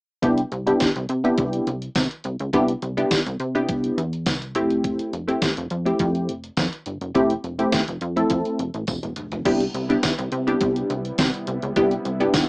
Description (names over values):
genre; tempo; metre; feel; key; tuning
early-eighties boogie funk; 104 BPM; 4/4; straight; C major; A4 = 441 Hz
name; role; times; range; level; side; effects
funky polysynth comp; accompaniment; 0.2-12.4 s; A3 to A4; -20 LUFS; equal; chorus
plucky analog bass; bass; 0.2-12.3 s; E1 to C3; -27 LUFS; equal; none
detuned 8-bit digital drum machine; drums; 0.2-12.5 s; crash cymbal, hi-hat, kick drum, snare drum, toms; -26 LUFS; equal; none
tambourine; percussion; 0.8-12.5 s; none; -31 LUFS; right 1 dB; none
brassy analog pad; sustained chords; 9.5-12.5 s; C3 to E4; -31 LUFS; equal; chorus
room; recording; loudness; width
light reverb; rough home demo mix, small speaker sound; -20 LUFS; side -28 dB against mid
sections
0.2-9.5 A section; 9.5-12.5 B section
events
drum fill 8.9-9.5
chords
0.2 Cmaj7; 4.6 Fmaj7; 9.5 Cmaj7